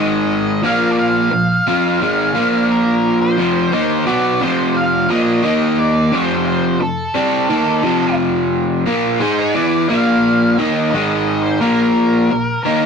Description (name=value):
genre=rock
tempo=88 BPM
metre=4/4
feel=straight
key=unclear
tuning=A4 = 440 Hz
part: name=octave-fuzz lead guitar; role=melody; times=0.0-12.9 s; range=A4 to F5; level=-20 LUFS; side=equal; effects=distortion, slapback echo
part: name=crunchy overdriven guitar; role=riff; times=0.0-12.9 s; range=F2 to Ab4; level=-14 LUFS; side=equal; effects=none
room=wet booth ambience, RT60 0.2 s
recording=rough rehearsal-room recording, tube saturation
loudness=-13 LUFS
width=side -6 dB against mid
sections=0.0-12.9 A section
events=none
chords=0.0 Ab5; 0.6 Bb5; 3.4 F5; 5.4 Eb5; 6.1 F; 8.9 Bb5; 10.9 Ab5; 11.6 Bb5